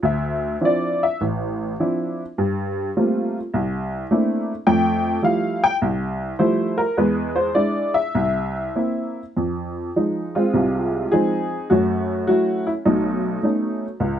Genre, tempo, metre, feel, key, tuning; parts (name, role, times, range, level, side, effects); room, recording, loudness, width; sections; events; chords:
solo jazz; 103 BPM; 4/4; swing 68% on 8ths, rubato; A4 = 439 Hz
honky-tonk upright piano; solo; 0.0-14.2 s; A1 to G5; -19 LUFS; equal
light reverb; dark, warm production, nothing above 10.6 kHz; -19 LUFS; side -10 dB against mid
0.0-9.4 A section; 9.4-14.2 B section
honky-tonk piano solo 0.0-9.4
0.0 Dm9; 2.4 Gm11; 3.5 C13; 4.7 Fmaj9; 7.0 E7; 8.1 C7; 9.4 Fm7; 11.7 Gbm7; 12.9 B9